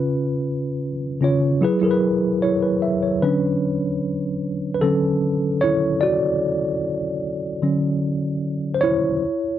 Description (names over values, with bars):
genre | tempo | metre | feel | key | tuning
soul | 75 BPM | 4/4 | straight | unclear | A4 = 440 Hz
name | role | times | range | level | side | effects
mellow tine electric piano | solo | 0.0-9.6 s | C#3 to E5 | -19 LUFS | equal | medium stereo tremolo
room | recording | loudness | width
light reverb | dry, close 1970s-style studio recording | -19 LUFS | side -11 dB against mid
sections
0.0-3.2 A section; 3.2-9.6 B section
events
tine electric piano solo 3.2-9.6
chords
0.0 C#7; 1.6 F#9sus4; 3.2 Dmaj9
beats
| 0.02 0.82 1.62 2.42 | 3.22 4.02 4.82 5.62 | 6.42 7.22 8.02 8.82